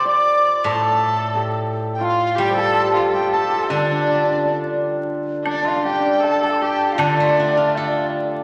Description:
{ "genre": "chinese traditional, Chinese chamber ensemble", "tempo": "78 BPM", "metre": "2/4", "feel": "rubato", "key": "D yu mode", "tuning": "A4 = 440 Hz", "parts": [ { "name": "bright reedy large dizi", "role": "melody", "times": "0.0-8.1 s", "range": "D5 to D6", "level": "-24 LUFS", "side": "equal", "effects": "none" }, { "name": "clear erhu", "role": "second line", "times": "0.0-8.1 s", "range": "D4 to D5", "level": "-27 LUFS", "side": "equal", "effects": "none" }, { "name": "hammered dulcimer", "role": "second line", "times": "0.0-8.4 s", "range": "D4 to D5", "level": "-23 LUFS", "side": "equal", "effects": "none" }, { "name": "steel-string zither", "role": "accompaniment", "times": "0.0-8.4 s", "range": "A2 to A4", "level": "-26 LUFS", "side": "equal", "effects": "none" }, { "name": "woodblock", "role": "percussion", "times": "5.5-7.9 s", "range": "none", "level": "-31 LUFS", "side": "equal", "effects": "none" } ], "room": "wet concert hall reverb, RT60 2.5 s", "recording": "vinyl crackle", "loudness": "-19 LUFS", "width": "mono", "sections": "0.0-5.5 A section; 5.5-8.4 B section", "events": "none", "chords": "none" }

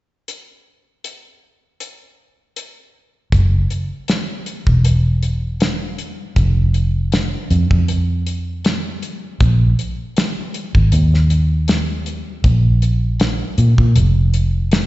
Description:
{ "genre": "straight-eighth soul blues", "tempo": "79 BPM", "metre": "4/4", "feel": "swing 54% on 16ths", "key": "unclear", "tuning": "A4 = 440 Hz", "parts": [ { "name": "damped 70s drum kit", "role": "drums", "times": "0.3-14.9 s", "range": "hi-hat, kick drum, snare drum", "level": "-19 LUFS", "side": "equal", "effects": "none" }, { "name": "vintage muted fingered electric bass", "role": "bass", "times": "3.3-14.9 s", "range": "E1 to Bb2", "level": "-14 LUFS", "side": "equal", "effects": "none" } ], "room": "light reverb", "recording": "live gig heard through the venue's PA, recital hall reverb, nothing above 7.9 kHz", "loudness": "-14 LUFS", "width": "side -17 dB against mid", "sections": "0.3-3.3 A section; 3.3-14.9 B section", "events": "none", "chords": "none" }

